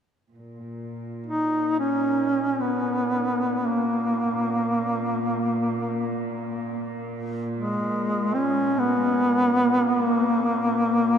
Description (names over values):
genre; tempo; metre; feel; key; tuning
caucasian folk, Caucasian lament; free time; none; none; Bb phrygian; A4 = 440 Hz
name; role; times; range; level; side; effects
warm chamber cello section; drone; 0.3-11.2 s; Bb2; -32 LUFS; equal; none
warm duduk; melody; 1.3-11.2 s; Ab3 to Eb4; -22 LUFS; equal; tape echo
room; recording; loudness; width
wet huge ambient reverb, RT60 8.2 s; in a vast, echoing space; -22 LUFS; side -8 dB against mid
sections
0.3-11.2 A section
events
none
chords
none